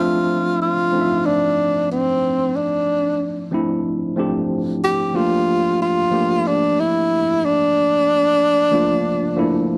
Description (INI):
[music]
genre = soul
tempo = 92 BPM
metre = 4/4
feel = swing 54% on 16ths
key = G dorian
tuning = A4 = 440 Hz
[part]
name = breathy tenor saxophone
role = melody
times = 0.0-9.8 s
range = C4 to G4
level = -20 LUFS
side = equal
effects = none
[part]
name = tine electric piano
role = accompaniment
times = 0.0-9.8 s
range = F3 to E5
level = -24 LUFS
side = equal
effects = overdrive
[sound]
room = light reverb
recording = none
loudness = -19 LUFS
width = mono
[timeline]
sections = 0.0-9.8 A section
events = none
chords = 0.0 Dm7; 5.2 Gm9